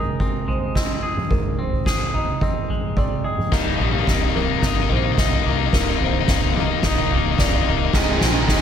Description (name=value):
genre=post-rock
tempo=109 BPM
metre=4/4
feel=straight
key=C minor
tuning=A4 = 440 Hz
part: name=pedal steel guitar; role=sustained chords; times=0.0-8.6 s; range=C3 to G5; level=-34 LUFS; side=right 1 dB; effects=none
part: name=felt-muted upright piano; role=arpeggios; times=0.0-8.6 s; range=Bb4 to Eb5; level=-30 LUFS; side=right 8 dB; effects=slapback echo
part: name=twangy electric guitar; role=arpeggios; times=0.0-8.6 s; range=C2 to Ab4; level=-28 LUFS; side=left 2 dB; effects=warbly pitch drift, slapback echo
part: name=fingered electric bass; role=bass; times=0.0-8.6 s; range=C1 to C2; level=-26 LUFS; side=equal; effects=none
part: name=soft-mallet drum kit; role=drums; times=0.2-8.6 s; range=crash cymbal, kick drum, snare drum, toms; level=-21 LUFS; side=equal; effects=none
part: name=overdriven electric guitar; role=riff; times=3.5-8.6 s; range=Bb3 to Ab4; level=-22 LUFS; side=left 13 dB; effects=none
part: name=tight distorted guitar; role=riff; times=7.9-8.6 s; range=Ab2 to Eb3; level=-24 LUFS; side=right 11 dB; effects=distortion
room=light reverb, small room reverb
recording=none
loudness=-18 LUFS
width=side -8 dB against mid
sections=0.0-3.5 A section; 3.5-8.6 B section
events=build-up 3.5-8.6; drum fill 3.5-8.6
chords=0.0 Abmaj7/C; 3.5 Cm7; 7.9 Ab/C